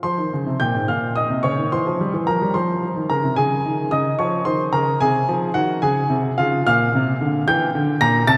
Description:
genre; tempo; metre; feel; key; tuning
classical-period piano sonatina; 73 BPM (dotted quarters); 6/8; rubato; F minor; A4 = 441 Hz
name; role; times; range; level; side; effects
clear grand piano; solo; 0.0-8.4 s; Ab2 to Bb6; -20 LUFS; equal; none
room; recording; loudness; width
wet cathedral reverb, RT60 5.0 s; in a vast, echoing space; -20 LUFS; mono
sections
0.0-8.4 A section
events
none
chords
0.0 F5; 1.7 C7/E; 2.5 F5; 3.4 Db5; 5.0 Ab7/C; 5.8 Db; 6.7 Gm7/Bb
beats
| 0.05 0.89 | 1.72 2.54 | 3.37 4.19 | 5.00 5.82 | 6.66 7.47 | 8.28

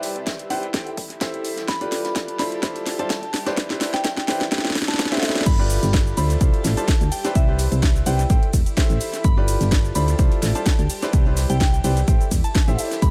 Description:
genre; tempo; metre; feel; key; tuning
piano house; 127 BPM; 4/4; swing 54% on 16ths; unclear; A4 = 440 Hz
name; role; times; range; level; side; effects
clear upright piano; riff; 0.0-13.0 s; E4 to G5; -30 LUFS; equal; sidechain pumping, low-pass filter, analog delay
solid FM bass; bass; 0.0-13.1 s; E1 to D2; -24 LUFS; equal; sidechain pumping, high-pass filter
house drum kit; drums; 0.0-13.1 s; crash cymbal, hi-hat, ride cymbal, shaker, snare drum; -28 LUFS; equal; overdrive, analog delay
jazz brush drum kit; drums; 0.0-13.1 s; hi-hat, snare drum; -40 LUFS; equal; none
granular cloud pad; texture; 0.0-13.1 s; G4 to A5; -38 LUFS; equal; built-in reverb, sidechain pumping
electronic kick drum; drums; 0.3-13.1 s; none; -21 LUFS; equal; overdrive, high-pass filter on kick
soft synth bell; melody; 0.5-13.1 s; E5 to B5; -33 LUFS; equal; chorus, analog delay
room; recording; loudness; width
small room ambience; echo-heavy mix; -21 LUFS; mono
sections
0.0-5.5 A section; 5.5-13.1 B section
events
build-up 0.0-5.5; drum fill 0.0-5.5; drop 5.5-13.1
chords
0.0 Cmaj9; 0.7 Am7; 1.7 G9; 2.4 Dm9; 3.6 Cmaj9; 4.5 Am7; 5.5 G9; 6.2 Dm9; 7.4 Cmaj9; 8.3 Am7; 9.2 G9; 10.0 Dm9; 11.1 Cmaj9; 12.1 Am7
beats
0.27 0.74 1.21 | 1.68 2.16 2.63 3.10 | 3.57 4.05 4.52 4.99 | 5.46 5.94 6.41 6.88 | 7.35 7.83 8.30 8.77 | 9.24 9.72 10.19 10.66 | 11.13 11.61 12.08 12.55 | 13.02

